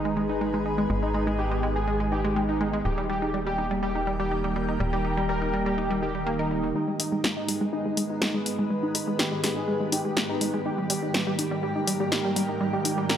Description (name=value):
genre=melodic techno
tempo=123 BPM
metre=4/4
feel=straight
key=G# harmonic minor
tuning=A4 = 440 Hz
part: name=wide unison lead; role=melody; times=0.0-13.2 s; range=D#4 to A#4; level=-31 LUFS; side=equal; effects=diffuse ambient delay
part: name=evolving wavetable pad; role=sustained chords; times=0.0-13.2 s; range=D#3 to G#4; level=-32 LUFS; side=right 1 dB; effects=chorus, built-in reverb, phaser
part: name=tight sequencer bass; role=bass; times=0.0-6.7 s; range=D#1 to G#1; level=-32 LUFS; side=equal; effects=none
part: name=ethereal airy pad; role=texture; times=0.0-13.2 s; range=D#4 to G#5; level=-34 LUFS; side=equal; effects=ensemble chorus, built-in reverb, phaser
part: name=wide unison pluck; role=arpeggios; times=0.1-13.2 s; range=D#3 to A#4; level=-29 LUFS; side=equal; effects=vintage 12-bit sampler grit, diffuse ambient delay
part: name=swarming drone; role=drone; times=7.3-13.2 s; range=G#2 to G#3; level=-38 LUFS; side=equal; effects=built-in reverb, wide subtle chorus
part: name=punchy analog drum machine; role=drums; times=7.0-13.2 s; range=hi-hat, snare drum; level=-27 LUFS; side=left 1 dB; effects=low-pass filter on hats, low-pass filter on snare
room=wet lush hall reverb, RT60 1.8 s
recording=dreamy mix soaked in reverb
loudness=-24 LUFS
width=side -9 dB against mid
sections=0.0-6.8 A section; 6.8-13.2 B section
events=filter sweep on synth pluck 0.0-6.8, 6.8-13.2; build-up 6.8-13.2; filter sweep on analog synth lead 6.8-13.2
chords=0.0 G#m; 2.9 D#; 6.8 G#m; 10.7 D#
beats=0.41 | 0.90 1.39 1.88 2.36 | 2.85 3.34 3.83 4.31 | 4.80 5.29 5.78 6.27 | 6.75 7.24 7.73 8.22 | 8.71 9.19 9.68 10.17 | 10.66 11.14 11.63 12.12 | 12.61 13.10